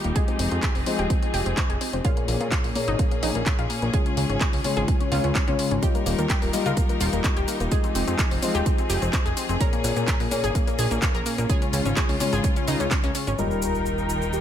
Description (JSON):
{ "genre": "progressive house", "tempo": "127 BPM", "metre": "4/4", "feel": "straight", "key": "Eb mixolydian", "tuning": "A4 = 440 Hz", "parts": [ { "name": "bright studio string section", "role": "sustained chords", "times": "0.0-14.4 s", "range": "Eb3 to G5", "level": "-32 LUFS", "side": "left 1 dB", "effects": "sidechain pumping, low-pass filter" }, { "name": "analog pluck", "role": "arpeggios", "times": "0.0-13.4 s", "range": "Bb3 to Bb4", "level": "-30 LUFS", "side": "equal", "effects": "chorus, sidechain pumping, tape echo" }, { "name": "felt-muted upright piano", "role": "stabs", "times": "0.0-14.4 s", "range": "Bb2 to Eb5", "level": "-28 LUFS", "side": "left 4 dB", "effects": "sidechain pumping, low-pass filter, tape echo" }, { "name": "fat analog bass", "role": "bass", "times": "0.0-14.4 s", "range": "Eb1 to Bb2", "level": "-27 LUFS", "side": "right 1 dB", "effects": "sidechain pumping" }, { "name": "pop drum kit", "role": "drums", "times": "0.0-14.4 s", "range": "handclaps, hi-hat, shaker", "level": "-30 LUFS", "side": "left 1 dB", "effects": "small room ambience" }, { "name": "electronic kick drum", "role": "drums", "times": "0.2-13.0 s", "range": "none", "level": "-24 LUFS", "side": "right 1 dB", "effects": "small room ambience" }, { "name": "wide unison lead", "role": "melody", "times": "13.4-14.4 s", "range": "G4 to Bb4", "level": "-28 LUFS", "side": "right 1 dB", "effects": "analog chorus, cassette tape, sidechain pumping, tape echo" }, { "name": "sub drop", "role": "sound effects", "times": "13.4-14.4 s", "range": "none", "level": "-35 LUFS", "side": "right 1 dB", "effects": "none" } ], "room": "light reverb, digital ambience", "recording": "none", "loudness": "-21 LUFS", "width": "side -10 dB against mid", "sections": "0.0-13.4 A section; 13.4-14.4 B section", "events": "filter sweep on synth pluck 0.0-13.4; impact 13.4-14.4", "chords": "0.2 Fm7; 2.0 Bbm7; 3.9 Db; 5.8 Ebadd9; 7.7 Fm7; 9.6 Bbm7; 11.5 Db; 13.4 Ebadd9", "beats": "| 0.16 0.63 1.10 1.57 | 2.05 2.52 2.99 3.46 | 3.94 4.41 4.88 5.35 | 5.83 6.30 6.77 7.24 | 7.72 8.19 8.66 9.13 | 9.61 10.08 10.55 11.02 | 11.49 11.97 12.44 12.91 | 13.38 13.86 14.33" }